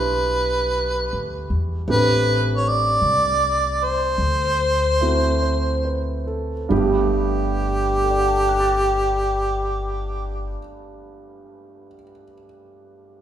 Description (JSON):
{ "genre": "jazz ballad", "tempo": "45-56 BPM", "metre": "4/4", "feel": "swing 67% on 8ths", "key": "G major", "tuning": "A4 = 439 Hz", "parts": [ { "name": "mellow harmonica", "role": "melody", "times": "0.0-10.6 s", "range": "G4 to D5", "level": "-20 LUFS", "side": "equal", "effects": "none" }, { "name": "warm grand piano", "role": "accompaniment", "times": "0.0-13.2 s", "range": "G2 to A6", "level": "-26 LUFS", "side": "right 4 dB", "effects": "none" }, { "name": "upright bass", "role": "bass", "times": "0.0-10.5 s", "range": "G1 to E2", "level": "-24 LUFS", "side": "left 1 dB", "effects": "none" } ], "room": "wet recital hall reverb, RT60 1.4 s", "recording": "recorded in a church or concert hall", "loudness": "-18 LUFS", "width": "side -10 dB against mid", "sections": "0.0-6.7 A section; 6.7-12.0 B section", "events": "slowing down 0.0-6.7", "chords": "0.0 Em9; 1.9 Am7; 4.2 D9; 6.7 Gmaj9", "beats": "0.77 | 1.87 3.01 4.19 5.42 | 6.71 8.04 9.35 10.67" }